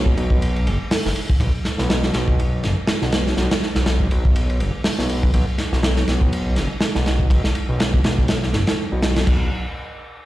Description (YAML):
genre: breakbeat, breaks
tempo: 122 BPM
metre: 4/4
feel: swing 56% on 16ths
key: unclear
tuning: A4 = 439 Hz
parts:
  - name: fat analog bass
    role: bass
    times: 0.0-9.5 s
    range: F#1 to B1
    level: -20 LUFS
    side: equal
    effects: tube saturation
  - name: crunchy breakbeat drum kit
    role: drums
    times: 0.1-9.4 s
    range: crash cymbal, hi-hat, kick drum, ride cymbal, snare drum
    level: -19 LUFS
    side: equal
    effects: none
room: light reverb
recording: played on a big sound system in a bare room, large studio reverb, lossy compression artefacts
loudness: -17 LUFS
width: side -15 dB against mid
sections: 0.0-9.3 A section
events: drop 0.0-9.3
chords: none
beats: 0.42 0.92 | 1.41 1.90 2.39 2.88 | 3.37 3.87 4.36 4.85 | 5.34 5.83 6.33 6.82 | 7.31 7.80 8.29 8.78 | 9.28